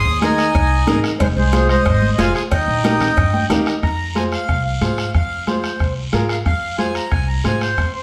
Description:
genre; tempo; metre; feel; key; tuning
latin, cumbia; 182 BPM; 4/4; straight; F minor; A4 = 440 Hz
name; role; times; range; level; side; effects
accordion; melody; 0.0-8.0 s; Ab4 to Eb6; -24 LUFS; equal; slapback echo
bright clarinet; second line; 0.0-3.5 s; Ab3 to Ab4; -26 LUFS; equal; none
upright bass; bass; 0.0-8.0 s; F1 to Ab2; -23 LUFS; equal; none
warm upright piano; accompaniment; 0.2-7.7 s; Eb4 to G5; -25 LUFS; equal; none
bombo; percussion; 0.2-7.9 s; none; -25 LUFS; equal; none
congas; percussion; 0.2-7.6 s; none; -26 LUFS; equal; none
cowbell and timbales; percussion; 0.2-3.7 s; none; -33 LUFS; equal; none
guiro; percussion; 0.2-8.0 s; none; -34 LUFS; equal; none
room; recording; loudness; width
wet studio reverb, RT60 0.8 s; heard from further back in the room; -18 LUFS; mono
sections
0.0-3.8 A section; 3.8-8.0 B section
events
upright piano fill 3.2-3.8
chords
0.0 Ab; 1.2 Fm; 2.5 Eb; 3.8 Fm

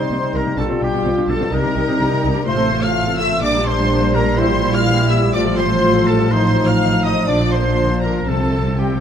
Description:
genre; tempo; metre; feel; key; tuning
classical; 125 BPM; 4/4; rubato; F major; A4 = 445 Hz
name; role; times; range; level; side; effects
warm symphonic violin section; melody; 0.0-9.0 s; G5 to F6; -24 LUFS; left 3 dB; none
small flute group; second line; 0.0-9.0 s; G4 to F5; -27 LUFS; left 2 dB; none
warm clarinet; second line; 0.0-9.0 s; C4 to F4; -28 LUFS; left 1 dB; none
warm oboe; second line; 0.0-9.0 s; G4 to F5; -26 LUFS; right 1 dB; none
warm symphonic violin section; second line; 0.0-9.0 s; G4 to F5; -25 LUFS; left 1 dB; none
warm bassoon; accompaniment; 0.0-9.0 s; F3 to A3; -27 LUFS; right 4 dB; none
warm symphonic viola section; accompaniment; 0.0-9.0 s; D3 to A4; -25 LUFS; right 1 dB; none
mellow French horn section; sustained chords; 0.0-8.9 s; F3 to F4; -24 LUFS; left 3 dB; none
concert harp; arpeggios; 0.0-9.0 s; A2 to G5; -25 LUFS; left 8 dB; none
rich chamber cello section; bass; 0.0-9.0 s; A2 to C3; -23 LUFS; right 2 dB; none
warm symphonic double bass section; bass; 0.1-9.0 s; A1 to C2; -22 LUFS; right 3 dB; none
room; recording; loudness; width
light reverb; close, detailed microphones; -14 LUFS; side -8 dB against mid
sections
0.0-9.0 A section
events
none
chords
0.0 Cm; 0.6 G7/B; 1.5 Cm; 2.5 F/A; 3.4 Gm/Bb; 4.4 C7/Bb; 5.3 F/A; 6.3 F7/A; 7.3 Bb; 8.3 Csus4

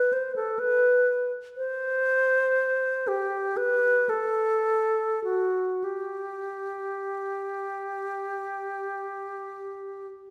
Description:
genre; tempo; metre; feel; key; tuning
classical, free, expressive piece for unaccompanied alto flute; free time; none; none; G major; A4 = 440 Hz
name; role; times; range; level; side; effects
alto flute; solo; 0.0-10.1 s; F#4 to C5; -27 LUFS; equal; none
room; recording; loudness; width
wet recital hall reverb, RT60 1.7 s; recorded in a church or concert hall; -27 LUFS; mono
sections
0.0-10.3 A section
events
none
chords
none

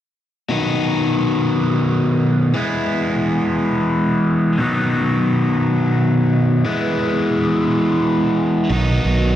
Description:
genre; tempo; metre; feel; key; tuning
rock; 58 BPM (dotted quarters); 6/8; straight; B major; A4 = 439 Hz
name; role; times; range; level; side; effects
overdriven electric guitar; riff; 0.5-9.4 s; B2 to E4; -16 LUFS; equal; phaser
picked electric bass; bass; 8.7-9.4 s; B1; -16 LUFS; right 2 dB; none
room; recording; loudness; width
wet studio reverb, RT60 0.7 s; dark, warm production; -15 LUFS; side -11 dB against mid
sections
0.5-9.4 A section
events
none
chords
0.5 B; 2.6 E; 4.6 B; 6.7 E; 8.7 B

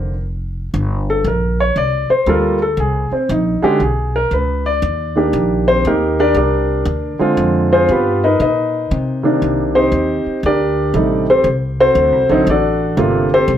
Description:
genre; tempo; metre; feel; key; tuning
jazz piano trio; 118 BPM; 4/4; swing 66% on 8ths; G minor; A4 = 444 Hz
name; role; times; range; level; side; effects
warm baby grand piano; melody; 0.0-13.5 s; C3 to D#5; -14 LUFS; equal; none
upright bass; bass; 0.0-13.6 s; F1 to C3; -19 LUFS; equal; none
room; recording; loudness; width
moderate studio reverb, RT60 0.8 s; none; -13 LUFS; side -10 dB against mid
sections
0.7-13.6 A section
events
grand piano solo 0.7-13.6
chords
0.0 Bb5; 0.7 Gmadd9; 2.8 Bb7sus2; 3.8 Bsus2; 4.8 Ebmaj7; 6.9 Dm7b5; 7.9 G7alt; 8.9 Cm9; 10.9 Am7b5; 12.0 D7; 13.0 Gm11

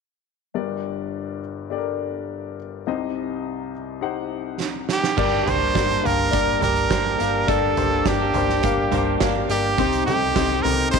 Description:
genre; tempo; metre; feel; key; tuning
piano-driven pop; 104 BPM; 4/4; straight; G harmonic minor, G minor from 5.2 s; A4 = 441 Hz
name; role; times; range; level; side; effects
clear grand piano; accompaniment; 0.5-11.0 s; G1 to F#5; -24 LUFS; left 11 dB; none
loose indie drum kit; drums; 4.6-11.0 s; crash cymbal, hi-hat, kick drum, snare drum, toms; -25 LUFS; right 5 dB; none
brilliant trumpet; melody; 4.9-11.0 s; G4 to C5; -22 LUFS; right 4 dB; none
tonewheel organ; sustained chords; 5.2-11.0 s; Bb3 to Eb6; -34 LUFS; right 2 dB; none
twelve-string electric guitar; riff; 5.2-11.0 s; G2 to G4; -28 LUFS; right 14 dB; none
vintage muted fingered electric bass; bass; 5.2-11.0 s; G1 to C2; -28 LUFS; right 1 dB; none
room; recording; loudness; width
light reverb, small room ambience; 1960s-style stereo with parts hard left and right; -20 LUFS; side -5 dB against mid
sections
0.6-5.2 A section; 5.2-11.0 B section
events
drum fill 4.6-5.2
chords
0.6 Gm; 2.9 Cm; 5.2 Gm; 9.8 Cm

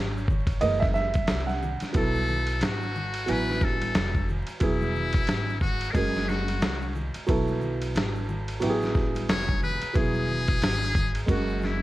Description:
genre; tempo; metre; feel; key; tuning
hip hop, jazz-hop; 90 BPM; 4/4; swing 59% on 16ths; E major; A4 = 440 Hz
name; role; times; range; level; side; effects
warm upright piano; accompaniment; 0.0-11.8 s; E3 to G#5; -29 LUFS; right 3 dB; none
upright bass; bass; 0.0-11.8 s; E1 to C2; -30 LUFS; equal; none
egg shaker and congas; percussion; 0.2-11.8 s; none; -39 LUFS; left 3 dB; none
dusty soul sampler-style drum kit; drums; 0.3-11.7 s; hi-hat, kick drum, ride cymbal, snare drum; -28 LUFS; equal; vintage 12-bit sampler grit
trumpet with metal mute; melody; 2.0-11.8 s; E4 to C#5; -30 LUFS; left 2 dB; none
room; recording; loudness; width
light reverb; vinyl crackle; -24 LUFS; side -16 dB against mid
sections
0.0-2.0 A section; 2.0-11.8 B section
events
upright piano solo 0.0-2.0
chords
0.0 E6 (rootless); 0.6 F#9; 2.0 B7sus4; 3.3 Asus2; 4.6 Eadd9; 6.0 F#add9; 7.3 B7sus4; 8.6 Asus2; 10.0 Eadd9; 11.3 F#9

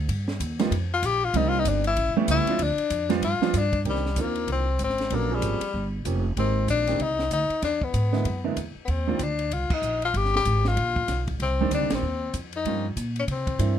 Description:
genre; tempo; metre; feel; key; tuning
jazz, small-group swing and bop; 191 BPM; 4/4; swing 61% on 8ths; C minor; A4 = 445 Hz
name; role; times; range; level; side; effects
upright bass; bass; 0.0-13.8 s; F1 to C3; -27 LUFS; equal; none
compact cocktail drum kit; drums; 0.1-13.7 s; crash cymbal, hi-hat, kick drum, ride cymbal, snare drum; -34 LUFS; equal; none
clear concert grand piano; accompaniment; 0.6-9.2, 11.6-13.8 s; D3 to A4; -27 LUFS; right 6 dB; none
breathy tenor saxophone; melody; 0.9-13.8 s; G3 to G4; -26 LUFS; left 5 dB; none
room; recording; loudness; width
little or no reverb; close, detailed microphones; -23 LUFS; side -9 dB against mid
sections
0.0-3.9 A section; 3.9-13.8 B section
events
tenor saxophone solo 0.0-3.9; band accent 9.7, 11.9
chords
0.1 Gm7b13; 1.3 Cm9; 2.0 A7; 2.6 Dmadd11; 3.2 G7; 3.9 Cm9; 5.1 Bbm9; 5.7 Fsus24; 6.4 Abmaj9; 7.6 E7#11; 8.9 Ebmaj7(no3); 10.1 G7b9; 11.4 Cm9; 12.7 Gm7b5; 13.3 C7

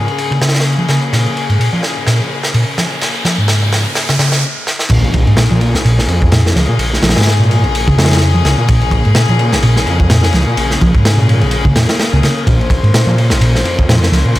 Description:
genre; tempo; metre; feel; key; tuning
breakbeat, breaks; 127 BPM; 4/4; swing 56% on 16ths; Bb minor; A4 = 440 Hz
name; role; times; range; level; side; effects
bright chamber string section; sustained chords; 0.0-14.4 s; Db3 to C5; -19 LUFS; left 4 dB; sidechain pumping
hollow-body short-scale picked electric bass; riff; 0.0-14.2 s; Ab2 to F3; -14 LUFS; equal; low-pass filter
detuned saw bass; bass; 0.0-14.4 s; Bb1 to Bb2; -16 LUFS; equal; high-pass filter
riser and impact; sound effects; 0.2-6.8 s; none; -23 LUFS; equal; none
crunchy breakbeat drum kit; drums; 0.1-14.4 s; crash cymbal, kick drum, ride cymbal, snare drum; -16 LUFS; equal; high-pass filter on kick, high-pass filter on cymbals, high-pass filter on snare, high-pass filter on room
room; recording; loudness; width
small room ambience; none; -10 LUFS; side -16 dB against mid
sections
0.0-4.9 A section; 4.9-14.4 B section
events
build-up 0.0-4.9; riser 0.2-4.4; drum fill 1.1-4.4, 4.7; stop 4.4-4.9; drop 4.9-14.4; impact 4.9-6.8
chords
0.0 Bbm7

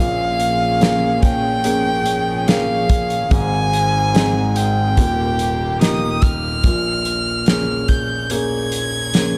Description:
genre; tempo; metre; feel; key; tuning
pop ballad; 72 BPM; 4/4; straight; unclear; A4 = 441 Hz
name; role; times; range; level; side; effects
rich violin; melody; 0.0-9.4 s; F5 to Ab6; -23 LUFS; equal; none
felt-muted upright piano; accompaniment; 0.0-9.4 s; Eb1 to Ab4; -23 LUFS; equal; none
warm studio string section; sustained chords; 0.0-6.6 s; Eb2 to Ab4; -27 LUFS; equal; none
loose indie drum kit; drums; 0.4-9.3 s; hi-hat, kick drum, snare drum; -20 LUFS; equal; none
room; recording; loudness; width
moderate concert hall reverb, RT60 2.1 s; dark, warm production; -18 LUFS; mono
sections
0.0-6.6 A section; 6.6-9.4 A section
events
none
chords
0.0 Bbm7; 3.3 Ab; 5.0 Eb; 6.6 Bbm7

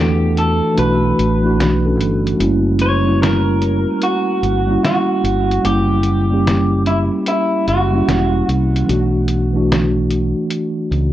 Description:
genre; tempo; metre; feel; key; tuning
lo-fi hip hop; 74 BPM; 4/4; swing 66% on 16ths; unclear; A4 = 441 Hz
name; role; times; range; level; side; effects
electric guitar through a small old amp; melody; 0.0-8.4 s; E4 to C#5; -20 LUFS; equal; spring reverb, tape echo
mellow tine electric piano; accompaniment; 0.0-11.1 s; E3 to A4; -17 LUFS; right 1 dB; medium stereo tremolo
fingered electric bass; bass; 0.0-11.1 s; E1 to E2; -18 LUFS; equal; none
lo-fi sampler-style drum kit; drums; 0.4-11.1 s; hi-hat, snare drum; -21 LUFS; left 1 dB; vintage 12-bit sampler grit
room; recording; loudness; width
moderate small room reverb, RT60 0.5 s; worn, warbling old tape, cassette tape, warbly pitch drift; -14 LUFS; side -13 dB against mid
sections
0.0-2.4 A section; 2.4-11.1 B section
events
kick muted 0.8-2.4, 2.4-11.1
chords
0.0 Esus2; 0.8 Bm7; 2.4 F#7b9; 8.9 Bm11

